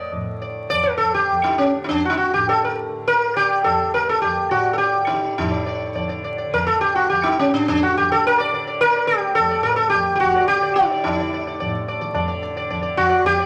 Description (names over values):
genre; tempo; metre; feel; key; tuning
indian classical, Hindustani; 105 BPM; 5/4; uneven beats; unclear; A4 = 440 Hz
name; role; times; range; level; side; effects
sitar; melody; 0.0-13.5 s; C#4 to Eb5; -20 LUFS; equal; none
tanpura; drone; 0.0-13.5 s; D2 to D3; -36 LUFS; equal; none
tabla; percussion; 0.1-13.5 s; none; -32 LUFS; equal; none
room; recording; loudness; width
moderate large studio reverb, RT60 1.1 s; vinyl crackle; -19 LUFS; mono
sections
0.0-5.4 A section; 5.4-13.5 B section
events
speeding up 0.0-13.5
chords
none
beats
0.12 0.71 1.30 1.90 | 2.48 3.07 3.65 4.23 4.81 | 5.39 5.97 6.54 7.11 7.68 | 8.25 8.81 9.38 9.94 10.49 | 11.05 11.61 12.16 12.71 13.26